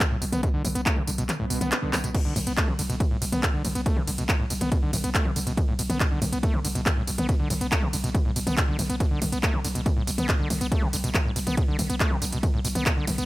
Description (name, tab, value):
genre	driving peak-time techno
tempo	140 BPM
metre	4/4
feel	straight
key	B minor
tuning	A4 = 444 Hz
part	electronic kick drum	drums	0.0-12.9 s	none	-25 LUFS	equal	none
part	techno drum kit	drums	0.0-13.3 s	crash cymbal, handclaps, hi-hat, ride cymbal, tambourine, toms	-28 LUFS	equal	sidechain pumping on hats, sidechain pumping on perc, sidechain pumping on toms, sidechain pumping on cymbals
part	overdriven acid bass	riff	0.1-13.2 s	A2 to B3	-30 LUFS	equal	distortion, sidechain pumping, dub echo
part	growling 808-style bass	bass	0.1-13.3 s	B1	-31 LUFS	equal	overdrive, sidechain pumping, low-pass filter
part	swell	sound effects	1.4-2.1 s	none	-36 LUFS	right 5 dB	none
room	little or no reverb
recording	none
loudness	-22 LUFS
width	side -18 dB against mid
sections	0.0-13.3 A section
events	kick drops out 1.3-2.1; swell 1.4-2.1; drum fill 1.9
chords	none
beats	0.00 | 0.43 0.86 1.29 1.72 | 2.15 2.57 3.00 3.43 | 3.86 4.29 4.72 5.15 | 5.57 6.00 6.43 6.86 | 7.29 7.72 8.15 8.57 | 9.00 9.43 9.86 10.29 | 10.72 11.15 11.57 12.00 | 12.43 12.86